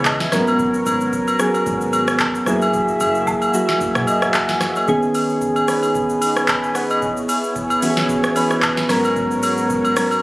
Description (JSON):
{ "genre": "amapiano", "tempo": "112 BPM", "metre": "4/4", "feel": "swing 55% on 16ths", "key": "G# minor", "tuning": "A4 = 440 Hz", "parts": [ { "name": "soft electric-piano-like synth keys", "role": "accompaniment", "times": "0.0-10.2 s", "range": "G#2 to B5", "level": "-18 LUFS", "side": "equal", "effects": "chorus" }, { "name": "warm analog pad", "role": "sustained chords", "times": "0.0-10.2 s", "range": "G#2 to E5", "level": "-24 LUFS", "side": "equal", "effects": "chorus, sidechain pumping" }, { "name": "deep dub fingered electric bass", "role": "bass", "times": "0.0-4.7 s", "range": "F#1 to C#2", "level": "-30 LUFS", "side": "equal", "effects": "none" }, { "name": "booming analog drum machine", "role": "drums", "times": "0.1-10.2 s", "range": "handclaps, hi-hat, kick drum, rim click, shaker, snare drum, toms", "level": "-23 LUFS", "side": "equal", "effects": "none" }, { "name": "agogo bells and woodblock", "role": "percussion", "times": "0.1-10.2 s", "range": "none", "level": "-23 LUFS", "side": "equal", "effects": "none" } ], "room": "light reverb", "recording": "recorded on a phone in the room, studio ambience", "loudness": "-16 LUFS", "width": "side -20 dB against mid", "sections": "0.0-10.2 A section", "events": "none", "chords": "0.3 G#m11; 2.5 F#9; 4.9 B69; 7.0 C#m7; 8.9 G#m11" }